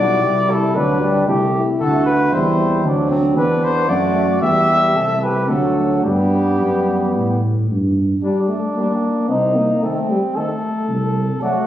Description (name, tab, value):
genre	classical, brass quintet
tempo	114 BPM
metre	3/4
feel	straight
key	G major, G minor from 7.7 s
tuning	A4 = 437 Hz
part	mellow trumpet	melody	0.0-11.6 s	D4 to E5	-20 LUFS	left 3 dB	none
part	mellow flugelhorn	second line	0.0-11.7 s	B3 to A4	-22 LUFS	right 2 dB	none
part	clear trombone	accompaniment	0.0-11.6 s	Eb3 to B3	-22 LUFS	equal	none
part	mellow French horn	accompaniment	0.0-11.7 s	G3 to E4	-23 LUFS	left 3 dB	none
part	dark tuba	bass	0.0-11.3 s	B1 to A2	-19 LUFS	right 2 dB	none
room	wet recital hall reverb, RT60 1.4 s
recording	recorded on a phone in the room, club reverb, lossy compression artefacts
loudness	-15 LUFS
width	side -12 dB against mid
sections	0.0-7.7 A section; 7.7-11.7 B section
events	none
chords	0.0 G/B; 1.3 Am7/C; 2.9 D7; 4.4 Em; 5.0 Am7/C; 5.5 D; 6.0 G; 7.7 Gm; 9.3 Adim/C; 10.9 D7/C